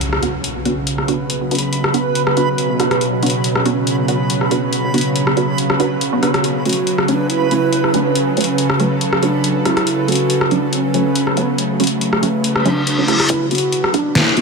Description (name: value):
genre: deep dubstep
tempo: 140 BPM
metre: 4/4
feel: swing 53% on 16ths, half-time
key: B minor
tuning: A4 = 440 Hz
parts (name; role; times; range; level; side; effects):
- bowed-like drone; sustained chords; 0.0-14.4 s; B2 to A4; -19 LUFS; right 1 dB; built-in reverb
- dubstep drum kit; drums; 0.0-14.4 s; hi-hat, rim click, snare drum; -20 LUFS; left 2 dB; none
- impact, reverse cymbal and riser; sound effects; 0.0-1.3, 12.6-14.4 s; none; -24 LUFS; left 2 dB; none
- backwards swelling texture; texture; 0.7-13.3 s; B4; -23 LUFS; right 5 dB; built-in reverb
- filtered dub chord stab; stabs; 0.2-14.4 s; F#3 to F#4; -22 LUFS; right 2 dB; phaser, dub echo
- breathy mellow low ney; melody; 6.7-14.4 s; A3 to F#4; -21 LUFS; equal; low-pass filter, dub echo
- electronic kick drum; drums; 13.3-14.0 s; none; -25 LUFS; equal; high-pass filter on kick, high-pass filter on room
room: moderate huge ambient reverb, RT60 6.5 s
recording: none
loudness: -14 LUFS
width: side -4 dB against mid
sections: 0.0-13.3 A section; 13.3-14.4 B section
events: impact 0.0-1.3; reverse cymbal 12.6-13.3; build-up 13.3-14.4; riser 13.3-14.4; filter sweep on ney 13.3-14.4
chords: 0.0 Bm; 6.4 F#m; 13.3 Bm